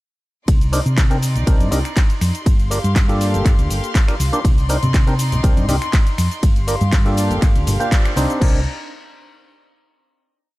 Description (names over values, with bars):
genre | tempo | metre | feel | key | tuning
filtered disco house | 121 BPM | 4/4 | swing 53% on 16ths | C dorian | A4 = 440 Hz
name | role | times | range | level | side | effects
clear studio string section | sustained chords | 0.5-8.6 s | Eb4 to C6 | -28 LUFS | left 1 dB | vintage 12-bit sampler grit, sidechain pumping
hollow-body short-scale fingered electric bass | bass | 0.5-8.6 s | G1 to C3 | -19 LUFS | equal | sidechain pumping
electronic kick drum | drums | 0.5-8.5 s | none | -15 LUFS | equal | none
house drum kit | drums | 0.5-8.5 s | crash cymbal, finger snaps, handclaps, hi-hat, ride cymbal, shaker | -27 LUFS | left 1 dB | sidechain pumping on hats, sidechain pumping on cymbals, sidechain pumping on perc
clav | accompaniment | 0.7-8.6 s | Bb3 to D5 | -23 LUFS | equal | phaser, sidechain pumping
tambourine and congas | percussion | 4.5-8.4 s | none | -28 LUFS | equal | none
room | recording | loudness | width
little or no reverb | dark, warm production | -14 LUFS | side -19 dB against mid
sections
0.5-8.4 drop; 8.4-10.4 final chord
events
drop 0.5-8.4; band accent 7.9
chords
0.5 Cm9; 2.5 Gm7; 4.4 Cm9; 6.4 Gm7; 8.4 Cm9